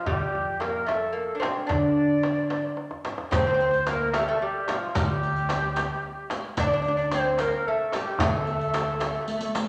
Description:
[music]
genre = Persian modal ensemble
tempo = 74 BPM (dotted quarters)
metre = 6/8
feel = straight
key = D dastgah shur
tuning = A4 = 439 Hz
[part]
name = lute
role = melody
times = 0.0-9.5 s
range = F3 to D4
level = -30 LUFS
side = equal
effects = none
[part]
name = breathy bright ney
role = second line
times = 0.0-9.6 s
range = F4 to Eb5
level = -30 LUFS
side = equal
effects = none
[part]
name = upright bass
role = bass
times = 0.1-9.1 s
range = D2 to D3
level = -36 LUFS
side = equal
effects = none
[part]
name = frame drum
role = percussion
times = 0.1-9.7 s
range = none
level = -34 LUFS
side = equal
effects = none
[part]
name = tombak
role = percussion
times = 0.1-9.7 s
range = none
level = -36 LUFS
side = equal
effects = none
[part]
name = riq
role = percussion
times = 3.3-9.7 s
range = none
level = -39 LUFS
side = equal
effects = none
[sound]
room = wet large studio reverb, RT60 1.2 s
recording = none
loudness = -26 LUFS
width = mono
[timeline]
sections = 0.0-3.3 A section; 3.3-9.7 B section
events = drum fill 2.8-3.3, 9.3-9.7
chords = none

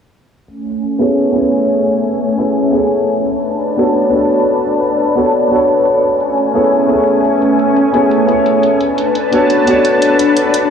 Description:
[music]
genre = liquid drum and bass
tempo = 173 BPM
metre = 4/4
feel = straight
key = A major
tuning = A4 = 442 Hz
[part]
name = lush unison pad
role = sustained chords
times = 0.5-10.7 s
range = A3 to A5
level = -14 LUFS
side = equal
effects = chorus, phaser
[part]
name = electronic hi-hat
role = drums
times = 0.5-10.6 s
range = none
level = -26 LUFS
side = equal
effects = overdrive
[part]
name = dark grand piano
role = accompaniment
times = 1.0-10.7 s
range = B3 to C#5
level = -13 LUFS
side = left 1 dB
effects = analog chorus, diffuse ambient delay
[sound]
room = wet huge ambient reverb, RT60 8.2 s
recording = dreamy mix soaked in reverb, low-pass filter, small room ambience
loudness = -11 LUFS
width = side -7 dB against mid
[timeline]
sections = 0.5-10.7 A section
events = filter sweep 0.5-10.7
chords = 0.5 Amaj7; 3.3 Bm7; 6.0 Amaj7; 8.8 Bm7

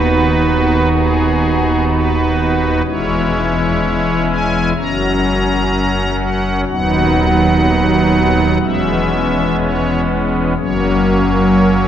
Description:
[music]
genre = classical, chorale-style piece for pipe organ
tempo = 62 BPM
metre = 4/4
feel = rubato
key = B major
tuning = A4 = 444 Hz
[part]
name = pipe organ, strings celeste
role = solo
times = 0.0-11.9 s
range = D#1 to A#5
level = -12 LUFS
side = equal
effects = none
[sound]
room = wet cathedral reverb, RT60 4.8 s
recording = none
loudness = -12 LUFS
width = side -10 dB against mid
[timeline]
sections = 0.0-11.9 A section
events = none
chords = 0.0 B/D#; 2.8 C#m/E; 4.8 F#; 6.7 B/D#; 8.6 C#m7/E; 10.6 F#

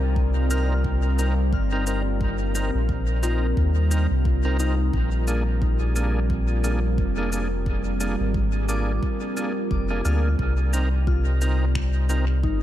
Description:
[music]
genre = ambient dub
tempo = 88 BPM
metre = 4/4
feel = swing 58% on 16ths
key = C minor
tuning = A4 = 440 Hz
[part]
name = deep dark ambient pad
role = sustained chords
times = 0.0-12.6 s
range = G3 to D5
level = -29 LUFS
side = right 1 dB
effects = chorus, built-in reverb
[part]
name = soft dub sub bass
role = bass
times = 0.0-12.6 s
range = F1 to Eb2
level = -22 LUFS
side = equal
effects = tube saturation
[part]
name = electronic kick drum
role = drums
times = 0.2-12.6 s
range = none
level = -27 LUFS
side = equal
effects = none
[part]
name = soft synth bell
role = arpeggios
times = 0.5-12.6 s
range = Eb4 to F6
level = -36 LUFS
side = left 6 dB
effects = chorus, ping-pong delay
[part]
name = overdriven tonewheel organ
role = stabs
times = 0.5-12.3 s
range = Bb3 to Bb4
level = -31 LUFS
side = right 2 dB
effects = chorus vibrato, dub echo
[part]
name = electronic cabasa and finger snaps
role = drums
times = 0.5-12.3 s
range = none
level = -37 LUFS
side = left 2 dB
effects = dub echo
[sound]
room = light reverb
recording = none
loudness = -21 LUFS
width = side -13 dB against mid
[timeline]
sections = 0.0-12.6 A section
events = none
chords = 0.0 Cm7; 4.9 Bb7; 10.4 Cm7

